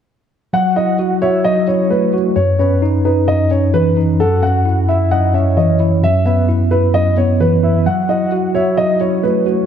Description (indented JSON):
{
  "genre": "hip hop",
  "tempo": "131 BPM",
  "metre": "4/4",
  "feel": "half-time",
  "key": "F# dorian",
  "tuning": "A4 = 440 Hz",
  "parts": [
    { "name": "dark concert grand piano", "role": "melody", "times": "0.5-9.4 s", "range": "A4 to F#5", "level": "-17 LUFS", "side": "equal", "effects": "tape echo" },
    { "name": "soft octave-layered synth lead", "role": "second line", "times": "0.5-9.7 s", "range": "B4 to F#5", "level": "-22 LUFS", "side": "right 2 dB", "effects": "chorus, tremolo, tape echo" },
    { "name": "mellow tine electric piano", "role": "accompaniment", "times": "0.5-9.7 s", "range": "F#2 to F#4", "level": "-14 LUFS", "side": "equal", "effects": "medium stereo tremolo" }
  ],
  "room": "light reverb, small room ambience",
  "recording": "dark, warm production",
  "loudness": "-12 LUFS",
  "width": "side -8 dB against mid",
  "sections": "0.5-9.7 A section",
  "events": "none",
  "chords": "0.5 F#m7; 2.4 C#madd9/F#; 4.2 F#7(no3); 6.0 E5/F#; 7.9 F#m7",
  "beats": "| 0.53 0.99 1.45 1.91 | 2.37 2.82 3.28 3.74 | 4.20 4.66 5.11 5.57 | 6.03 6.49 6.95 7.40 | 7.86 8.32 8.78 9.23"
}